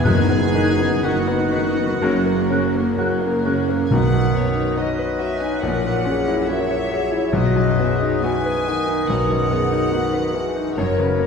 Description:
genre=classical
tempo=60-72 BPM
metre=4/4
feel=rubato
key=B major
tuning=A4 = 440 Hz
part: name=bright concert grand piano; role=melody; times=0.0-11.3 s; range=A#1 to C#5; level=-21 LUFS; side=left 1 dB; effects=none
part: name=warm studio violin section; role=melody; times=0.0-11.3 s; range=A#4 to G#5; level=-34 LUFS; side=left 3 dB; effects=none
part: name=clear clarinet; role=second line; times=0.0-11.3 s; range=A#4 to D#5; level=-31 LUFS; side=left 2 dB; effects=none
part: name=hollow large flute ensemble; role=second line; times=0.0-11.3 s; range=A#4 to F#6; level=-31 LUFS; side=equal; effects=none
part: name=warm oboe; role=second line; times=0.0-11.3 s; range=F#4 to D#5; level=-30 LUFS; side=equal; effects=none
part: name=warm symphonic violin section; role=second line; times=0.0-10.6 s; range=A#3 to A#4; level=-30 LUFS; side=left 1 dB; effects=none
part: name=warm studio viola section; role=accompaniment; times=0.0-10.6 s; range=C#3 to D#4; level=-30 LUFS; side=right 2 dB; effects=none
part: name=bright trumpet section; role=stabs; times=0.0-3.0 s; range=F#4 to G#4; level=-28 LUFS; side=right 1 dB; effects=none
part: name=mellow tuba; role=bass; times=0.0-3.8 s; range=F#1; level=-27 LUFS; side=right 2 dB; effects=none
part: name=timpani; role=percussion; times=0.0-8.6 s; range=F#2 to B2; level=-23 LUFS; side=left 2 dB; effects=none
part: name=mellow bassoon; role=accompaniment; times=0.1-11.3 s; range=C#3 to F#3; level=-27 LUFS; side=right 1 dB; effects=none
part: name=warm French horn section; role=sustained chords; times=0.1-11.3 s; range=A#3 to B4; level=-27 LUFS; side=left 4 dB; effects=none
part: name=dark symphonic double bass section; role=bass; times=0.1-11.3 s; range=F#1 to B1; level=-29 LUFS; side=right 2 dB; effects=none
part: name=warm symphonic cello section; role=bass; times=0.1-11.3 s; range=F#2 to B2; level=-30 LUFS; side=right 3 dB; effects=none
room=wet scoring stage reverb, RT60 2.0 s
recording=heard from further back in the room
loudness=-17 LUFS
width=side -6 dB against mid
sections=0.0-3.9 A section; 3.9-11.3 B section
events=none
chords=0.1 B/F#; 2.0 F#; 3.9 B; 5.6 F#7/A#; 7.3 B

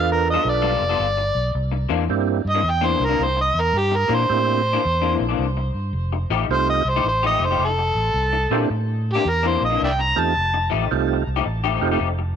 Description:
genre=blues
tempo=109 BPM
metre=4/4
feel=swing 65% on 8ths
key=C mixolydian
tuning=A4 = 440 Hz
part: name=overdriven harmonica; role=melody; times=0.0-10.7 s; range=G4 to Bb5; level=-22 LUFS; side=right 1 dB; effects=tape echo
part: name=percussive tonewheel organ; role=accompaniment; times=0.0-12.0 s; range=A3 to B4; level=-24 LUFS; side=right 13 dB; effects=slow rotary speaker, overdrive, chorus vibrato
part: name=fingered electric bass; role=bass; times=0.0-12.3 s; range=F1 to Bb2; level=-24 LUFS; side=equal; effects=none
part: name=electric guitar through a small old amp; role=riff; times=0.3-12.2 s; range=C3 to A4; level=-24 LUFS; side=left 13 dB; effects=ensemble chorus
room=light reverb, digital ambience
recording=1960s-style stereo with parts hard left and right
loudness=-18 LUFS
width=side -8 dB against mid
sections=0.0-1.5 A section; 1.5-12.4 B section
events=harmonica solo 1.5-12.4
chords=0.0 G9; 1.5 C9; 6.0 F9; 8.2 C9; 10.4 F9

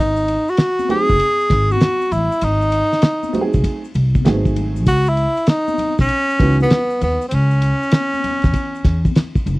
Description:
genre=hip hop, jazz-hop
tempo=98 BPM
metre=4/4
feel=swing 66% on 16ths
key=C# minor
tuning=A4 = 438 Hz
part: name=clear tenor saxophone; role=melody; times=0.0-9.2 s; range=B3 to G#4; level=-18 LUFS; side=equal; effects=none
part: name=upright bass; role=bass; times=0.0-9.6 s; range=F#1 to E2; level=-18 LUFS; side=equal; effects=none
part: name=maracas and congas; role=percussion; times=0.2-9.6 s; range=none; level=-31 LUFS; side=left 8 dB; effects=none
part: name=cloth-damped thuddy drum kit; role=drums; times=0.3-9.6 s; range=hi-hat, kick drum, ride cymbal, snare drum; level=-16 LUFS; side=equal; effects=none
part: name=dark upright piano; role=accompaniment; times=0.9-6.6 s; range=E3 to G#4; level=-20 LUFS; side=right 3 dB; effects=none
room=little or no reverb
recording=dry, close 1970s-style studio recording, vinyl crackle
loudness=-14 LUFS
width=side -21 dB against mid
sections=0.0-9.6 A section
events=none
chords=0.0 G#7b9; 4.9 C#madd9

